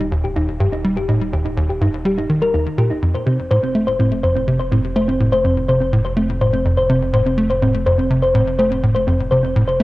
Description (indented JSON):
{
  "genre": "ambient, sequencer-driven space music",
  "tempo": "124 BPM",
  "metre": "4/4",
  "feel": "straight",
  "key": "unclear",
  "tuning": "A4 = 439 Hz",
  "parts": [
    { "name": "thumb-piano-like synth pluck", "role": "arpeggios", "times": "0.0-9.8 s", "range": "C4 to C5", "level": "-19 LUFS", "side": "equal", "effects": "chorus, auto-pan, cassette tape, ping-pong delay" },
    { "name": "warm sub bass", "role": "bass", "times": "0.0-9.8 s", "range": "Eb1 to F1", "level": "-25 LUFS", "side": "equal", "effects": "none" },
    { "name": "tight sequencer bass", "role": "riff", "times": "0.1-9.8 s", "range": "Eb2 to A3", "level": "-18 LUFS", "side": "equal", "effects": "cassette tape, ping-pong delay" }
  ],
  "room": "wet spring reverb, RT60 1.6 s, digital ambience",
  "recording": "home recording on cassette, nothing above 10.3 kHz",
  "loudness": "-15 LUFS",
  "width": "side -18 dB against mid",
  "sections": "0.0-9.8 A section",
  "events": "none",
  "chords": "0.0 Eb; 3.0 F",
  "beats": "0.12 0.60 | 1.09 1.57 2.06 2.54 | 3.02 3.51 3.99 4.47 | 4.96 5.44 5.93 6.41 | 6.89 7.38 7.86 8.35 | 8.83 9.31 9.80"
}